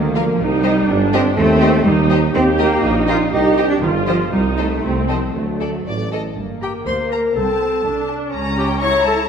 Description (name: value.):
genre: cinematic, playful, whimsical film cue.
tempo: 122 BPM.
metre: 2/4.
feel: straight.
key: G minor.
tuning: A4 = 438 Hz.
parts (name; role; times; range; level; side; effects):
dark studio viola section; accompaniment; 0.0-9.3 s; A3 to G4; -20 LUFS; equal; none.
clear tuba; bass; 0.0-6.3 s; G1 to Eb2; -21 LUFS; right 2 dB; none.
rich studio double bass section; bass; 0.0-9.3 s; G1 to Eb2; -24 LUFS; right 3 dB; none.
warm studio cello section; bass; 0.0-9.3 s; C2 to F4; -20 LUFS; right 2 dB; none.
rich studio violin section; melody; 0.2-9.3 s; D5 to Bb5; -29 LUFS; left 5 dB; none.
rich studio violin section; second line; 0.2-9.3 s; F4 to C#6; -26 LUFS; left 3 dB; none.
warm clarinet; second line; 6.6-9.2 s; G4 to C#5; -19 LUFS; left 2 dB; none.
room: wet scoring stage reverb, RT60 1.6 s.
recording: minimal, uncompressed stereo recording.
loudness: -15 LUFS.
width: side -7 dB against mid.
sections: 0.0-6.4 A section; 6.4-9.3 B section.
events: none.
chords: 0.4 Cm; 1.4 Cm/Eb; 2.3 Eb; 3.3 Cm; 4.3 Adim/C; 5.3 D; 6.4 Gm; 7.4 Amadd11/C; 8.3 C#dim7.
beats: | 0.40 0.89 | 1.38 1.86 | 2.35 2.84 | 3.33 3.82 | 4.32 4.83 | 5.34 5.86 | 6.37 6.86 | 7.36 7.85 | 8.33 8.82.